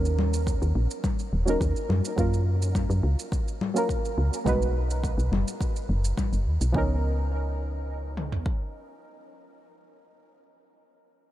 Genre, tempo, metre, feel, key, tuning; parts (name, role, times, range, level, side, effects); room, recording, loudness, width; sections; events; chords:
organic downtempo; 105 BPM; 4/4; straight; Db mixolydian; A4 = 440 Hz
deep mellow chord stab; accompaniment; 0.0-11.3 s; F3 to Cb5; -31 LUFS; right 2 dB; chorus, sidechain pumping, diffuse ambient delay
woody FM bass; bass; 0.0-8.4 s; Eb1 to Gb2; -25 LUFS; equal; sidechain pumping
shaker and congas; drums; 0.1-6.7 s; -34 LUFS; left 5 dB
deep house drum kit; drums; 0.5-8.6 s; kick drum, toms; -29 LUFS; equal
light reverb; -24 LUFS; side -14 dB against mid
0.0-6.7 A section; 6.7-9.0 B section
0.0 Ebm7; 2.2 Gbmaj7; 4.5 Cb6; 6.7 Db13